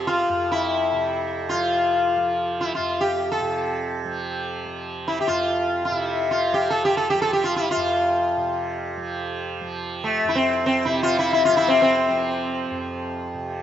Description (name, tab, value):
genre	indian classical, Hindustani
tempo	free time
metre	none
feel	none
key	F raga hamsadhwani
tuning	A4 = 439 Hz
part	sitar	melody	0.0-12.8 s	A3 to A4	-21 LUFS	left 1 dB	none
part	tanpura	drone	0.0-13.6 s	F2 to F3	-29 LUFS	right 4 dB	none
room	wet lush hall reverb, RT60 2.6 s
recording	rough home demo mix, nothing above 7.7 kHz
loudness	-20 LUFS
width	side -10 dB against mid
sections	0.0-13.6 A section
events	none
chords	none